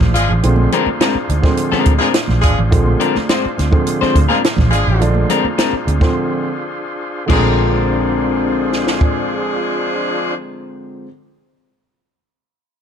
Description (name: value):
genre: funk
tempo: 105 BPM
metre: 4/4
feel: straight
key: Bb mixolydian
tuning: A4 = 441 Hz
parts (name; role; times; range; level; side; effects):
- overdriven tonewheel organ; sustained chords; 0.0-10.3 s; D4 to C5; -24 LUFS; left 1 dB; fast rotary speaker
- vintage muted fingered electric bass; bass; 0.0-11.0 s; Ab1 to D2; -17 LUFS; equal; none
- compact cocktail drum kit; drums; 0.0-9.1 s; crash cymbal, hi-hat, kick drum, snare drum; -17 LUFS; equal; none
- warm horn section; second line; 0.1-10.3 s; F3 to Ab4; -21 LUFS; equal; none
- congas; percussion; 0.3-7.6 s; none; -25 LUFS; right 5 dB; none
- dark upright piano; stabs; 0.4-11.1 s; D3 to D4; -22 LUFS; right 3 dB; none
- electric guitar at the edge of break-up; accompaniment; 0.7-11.1 s; Ab3 to C5; -19 LUFS; left 5 dB; none
room: light reverb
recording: dark, warm production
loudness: -13 LUFS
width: side -8 dB against mid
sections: 0.0-7.3 A section; 7.3-9.6 B section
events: break 6.2-7.3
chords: 0.0 Bb9